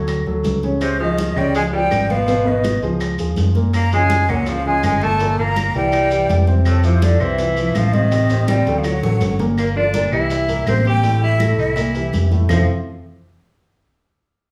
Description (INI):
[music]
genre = Afro-Cuban jazz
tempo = 164 BPM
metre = 4/4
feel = straight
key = unclear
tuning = A4 = 440 Hz
[part]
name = warm grand piano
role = accompaniment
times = 0.0-12.7 s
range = A2 to Db5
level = -24 LUFS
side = equal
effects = none
[part]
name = fingered electric bass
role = bass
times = 0.0-12.7 s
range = F1 to Gb2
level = -21 LUFS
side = equal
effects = none
[part]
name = bongos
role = percussion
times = 0.1-12.6 s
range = none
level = -34 LUFS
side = equal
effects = none
[part]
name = claves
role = percussion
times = 0.1-12.6 s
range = none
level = -33 LUFS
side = equal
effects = none
[part]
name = congas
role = percussion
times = 0.1-12.6 s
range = none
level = -29 LUFS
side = equal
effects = none
[part]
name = maracas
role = percussion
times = 0.1-12.6 s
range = none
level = -39 LUFS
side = equal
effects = none
[part]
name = breathy concert flute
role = melody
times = 0.8-12.7 s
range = A4 to Bb5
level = -24 LUFS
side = equal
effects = none
[part]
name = bright tenor saxophone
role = second line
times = 0.8-12.7 s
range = A2 to G4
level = -26 LUFS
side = equal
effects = none
[sound]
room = wet large studio reverb, RT60 0.9 s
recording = band playing live in one room, small room ambience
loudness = -17 LUFS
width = mono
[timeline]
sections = 0.0-9.6 A section; 9.6-12.5 B section; 12.5-13.9 C section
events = drum fill 8.5-9.6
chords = 0.1 D; 0.8 Dbmaj9; 2.3 Abm; 3.0 Db; 3.7 Gbmaj9; 5.2 Gm; 5.9 C; 6.7 Fmaj7; 8.1 Am7b5; 8.8 D; 9.6 Gm7; 10.3 C6; 11.0 Am; 11.8 C6; 12.5 Fmaj7